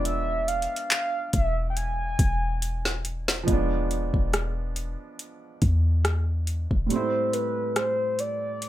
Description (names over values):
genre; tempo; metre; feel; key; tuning
contemporary R&B; 70 BPM; 4/4; swing 54% on 16ths; unclear; A4 = 435 Hz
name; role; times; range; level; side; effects
mellow horn-like synth lead; melody; 0.0-8.7 s; B4 to G#5; -27 LUFS; equal; chorus, tape echo
warm grand piano; accompaniment; 0.0-8.7 s; A2 to E4; -31 LUFS; right 4 dB; none
clean 808-style bass; bass; 0.0-6.9 s; E1 to E2; -26 LUFS; equal; none
smooth R&B drum kit; drums; 0.1-8.7 s; handclaps, hi-hat, kick drum, rim click, snare drum; -26 LUFS; equal; none
room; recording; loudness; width
little or no reverb; none; -23 LUFS; side -13 dB against mid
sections
0.0-3.5 A section; 3.5-6.9 B section; 6.9-8.7 C section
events
drum fill 2.6-3.5; kick muted 6.9-8.7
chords
0.0 E7b9; 6.9 Am7